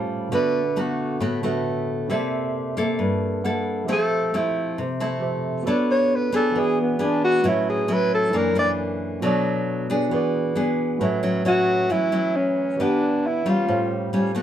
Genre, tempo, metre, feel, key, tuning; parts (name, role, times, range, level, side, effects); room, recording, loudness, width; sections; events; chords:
bossa nova; 135 BPM; 4/4; straight; A major; A4 = 437 Hz
barky tine electric piano; accompaniment; 0.0-14.4 s; D3 to A5; -28 LUFS; right 5 dB
nylon-string guitar; accompaniment; 0.0-14.4 s; F#2 to C#5; -23 LUFS; left 1 dB
breathy alto saxophone; melody; 0.3-1.2, 3.9-8.7, 11.5-13.9 s; B3 to D5; -21 LUFS; equal
light reverb; band playing live in one room; -20 LUFS; side -10 dB against mid
0.0-11.0 A section; 11.0-14.4 B section
tine electric piano fill 0.0-0.3, 3.2-3.9; alto saxophone solo 0.0-11.0
0.3 D6; 2.1 C13; 3.9 Fmaj7; 5.7 Bm9; 6.6 E7; 7.4 A6; 8.3 F#7alt; 9.2 Bm7; 10.1 E7; 11.0 A6; 12.8 Em7; 13.7 A7alt